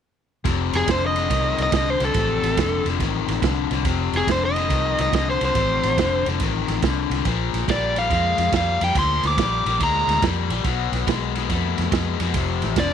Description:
electric blues shuffle; 141 BPM; 4/4; swing 66% on 8ths; F mixolydian; A4 = 438 Hz
cranked stack guitar; riff; 0.4-12.9 s; F2 to A3; -24 LUFS; left 15 dB; overdrive
vintage muted fingered electric bass; bass; 0.4-12.9 s; F1 to F2; -25 LUFS; equal
vintage drum kit; drums; 0.4-12.9 s; kick drum, ride cymbal, snare drum; -26 LUFS; right 5 dB
overdriven electric guitar; melody; 0.8-10.2, 12.8-12.9 s; Ab4 to D6; -22 LUFS; right 1 dB
studio reverb; 1960s-style stereo; -19 LUFS; side -8 dB against mid
0.4-12.9 A section
0.4 F7; 7.3 Bb7; 10.6 B5; 12.3 F

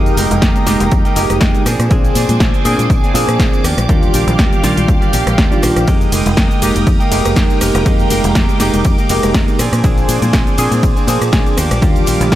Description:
filtered disco house; 121 BPM; 4/4; swing 55% on 16ths; F dorian; A4 = 439 Hz
tine electric piano; accompaniment; 0.0-12.4 s; Eb3 to Ab4; -18 LUFS; equal; overdrive, phaser, sidechain pumping
string machine, full ensemble; sustained chords; 0.0-12.4 s; G4 to Eb6; -22 LUFS; equal; phaser, ensemble chorus, vintage 12-bit sampler grit, sidechain pumping
direct-recorded clean electric guitar; riff; 0.0-12.4 s; F3 to Ab4; -22 LUFS; right 3 dB; sidechain pumping
fingered electric bass; bass; 0.0-12.4 s; F1 to Bb2; -17 LUFS; equal; sidechain pumping
punchy analog drum machine; drums; 0.1-12.4 s; cabasa, hi-hat, ride cymbal, rim click, snare drum; -20 LUFS; equal; overdrive, sidechain pumping on hats, sidechain pumping on perc, sidechain pumping on cymbals
tambourine and congas; percussion; 0.1-12.4 s; -27 LUFS; left 3 dB
electronic kick drum; drums; 0.4-12.4 s; -14 LUFS; equal; overdrive
digital ambience; -10 LUFS; side -13 dB against mid
0.0-12.4 A section
0.0 Fm11; 1.7 Bb9; 3.6 Ebmaj9; 5.9 Fm11; 9.6 Bb9; 11.6 Ebmaj9

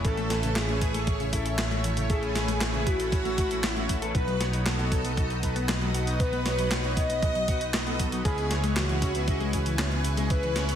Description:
synthwave; 117 BPM; 4/4; straight; A4 = 443 Hz
warm velvety synth lead; melody; 0.0-10.8 s; E4 to D#5; -33 LUFS; equal; chorus, digital delay
string machine, violins; second line; 0.0-10.8 s; E4 to D#5; -37 LUFS; right 1 dB; ensemble chorus, tape echo
lush unison pad; sustained chords; 0.0-10.8 s; A3 to D#6; -37 LUFS; equal; chorus, phaser, sidechain pumping
analog synth brass; stabs; 0.0-10.8 s; A3 to D#5; -35 LUFS; right 2 dB; chorus, tape echo
modern bright picked electric bass; bass; 0.0-10.8 s; A1 to C#2; -30 LUFS; equal; sidechain pumping
electronic kick drum; drums; 0.0-10.4 s; -27 LUFS; equal
gated 80s digital drum machine; drums; 0.0-10.8 s; handclaps, hi-hat, snare drum; -32 LUFS; equal; gated reverb, gated reverb snare
mellow electric guitar; arpeggios; 0.2-10.8 s; C#3 to A4; -35 LUFS; left 5 dB; spring reverb, tape echo
light reverb; dense, heavily limited modern master; -24 LUFS; side -9 dB against mid
0.0-10.8 A section
0.0 A; 4.1 B; 8.3 C#m7

